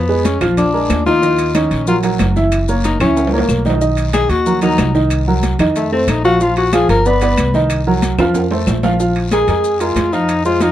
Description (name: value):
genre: Afro-Cuban jazz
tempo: 185 BPM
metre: 4/4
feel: straight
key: Bb minor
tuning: A4 = 440 Hz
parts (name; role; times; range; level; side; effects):
- warm tenor saxophone; second line; 0.0-10.7 s; A3 to B4; -16 LUFS; left 3 dB; none
- warm baby grand piano; accompaniment; 0.0-10.7 s; Eb3 to F5; -16 LUFS; right 2 dB; none
- upright bass; bass; 0.0-10.7 s; Gb1 to F2; -19 LUFS; equal; none
- congas; percussion; 0.1-10.7 s; none; -22 LUFS; left 1 dB; none
- timbales; percussion; 0.2-10.7 s; none; -24 LUFS; right 4 dB; none
- guiro; percussion; 0.3-10.7 s; none; -34 LUFS; left 6 dB; none
- maracas; percussion; 0.3-10.7 s; none; -33 LUFS; left 6 dB; none
- claves; percussion; 0.4-8.8 s; none; -29 LUFS; left 7 dB; none
room: light reverb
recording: dark, warm production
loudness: -12 LUFS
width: side -12 dB against mid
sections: 0.0-9.0 A section; 9.0-10.7 A section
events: tenor saxophone solo 0.0-10.7; drum fill 3.2-3.8, 8.2-9.0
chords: 0.0 Fdim; 0.6 Bb7; 1.2 Ebm9; 2.5 Gb7; 3.8 Bmaj7; 5.1 Cm7b5; 5.8 F7; 6.4 Bb5; 7.1 G; 7.7 Cm7b5; 8.3 F; 9.0 Bb5